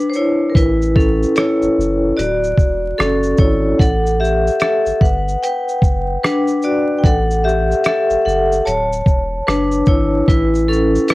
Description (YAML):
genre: lo-fi hip hop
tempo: 74 BPM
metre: 4/4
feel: swing 60% on 16ths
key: A mixolydian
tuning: A4 = 441 Hz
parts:
  - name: vibraphone with hard mallets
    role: accompaniment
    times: 0.0-11.1 s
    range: C#4 to A5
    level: -15 LUFS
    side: equal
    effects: cassette tape, plate reverb
  - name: lo-fi sampler-style drum kit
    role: drums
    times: 0.1-11.1 s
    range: hi-hat, kick drum, rim click, shaker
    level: -15 LUFS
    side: equal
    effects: none
  - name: soft dub sub bass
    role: bass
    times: 0.6-11.0 s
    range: D1 to A1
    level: -20 LUFS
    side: equal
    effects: transformer saturation
room: light reverb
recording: worn, warbling old tape, cassette tape, vinyl crackle, warbly pitch drift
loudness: -13 LUFS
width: side -19 dB against mid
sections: 0.0-11.1 A section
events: vibraphone solo 0.0-11.1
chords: 0.0 N.C.; 0.6 A6; 2.2 Dmaj7; 3.8 Emadd11; 5.0 Gmaj7; 7.0 F#m7; 8.7 Dmaj7; 10.3 A